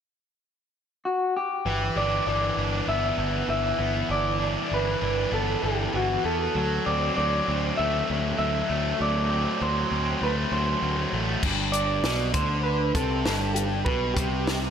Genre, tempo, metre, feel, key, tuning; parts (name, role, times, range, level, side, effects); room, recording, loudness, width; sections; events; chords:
indie rock; 98 BPM; 4/4; straight; G major; A4 = 439 Hz
electric guitar through a small old amp; melody; 1.1-14.7 s; F#4 to E5; -27 LUFS; equal
fuzz guitar; riff; 1.7-14.7 s; G2 to D4; -27 LUFS; equal; distortion
growling picked electric bass; bass; 1.7-14.7 s; G1 to E2; -29 LUFS; equal; overdrive
compact cocktail drum kit; drums; 11.4-14.6 s; crash cymbal, hi-hat, kick drum, snare drum; -29 LUFS; left 1 dB
wet lush hall reverb, RT60 2.4 s; big arena sound; -23 LUFS; side -8 dB against mid
0.0-1.7 A section; 1.7-11.4 B section; 11.4-14.7 C section
0.0 N.C.; 1.7 G6; 6.6 D7; 11.4 G